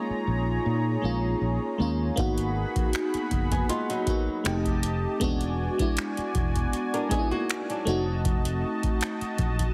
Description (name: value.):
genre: contemporary R&B.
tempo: 79 BPM.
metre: 4/4.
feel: swing 54% on 16ths.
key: unclear.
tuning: A4 = 442 Hz.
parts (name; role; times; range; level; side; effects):
FM electric piano with soft pad layer; accompaniment; 0.0-9.7 s; G#3 to G4; -32 LUFS; equal; chorus, phaser.
warm analog pad; sustained chords; 0.0-9.7 s; F#4 to B5; -36 LUFS; equal; chorus, tremolo.
fingered electric bass; bass; 0.1-9.7 s; E1 to A#2; -31 LUFS; equal; none.
booming analog drum machine; drums; 2.2-9.7 s; finger snaps, hi-hat, kick drum; -30 LUFS; equal; none.
flamenco guitar; arpeggios; 3.5-8.1 s; F#3 to A#4; -35 LUFS; equal; digital delay.
room: light reverb, digital ambience.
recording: heavily compressed radio sound.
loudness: -27 LUFS.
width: mono.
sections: 0.0-9.7 A section.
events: none.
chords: 0.0 A#m7; 2.2 G#m7; 4.5 F9; 5.2 E9; 7.9 F7b9.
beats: 0.66 1.41 | 2.17 2.93 3.69 4.45 | 5.21 5.97 6.73 7.49 | 8.25 9.01.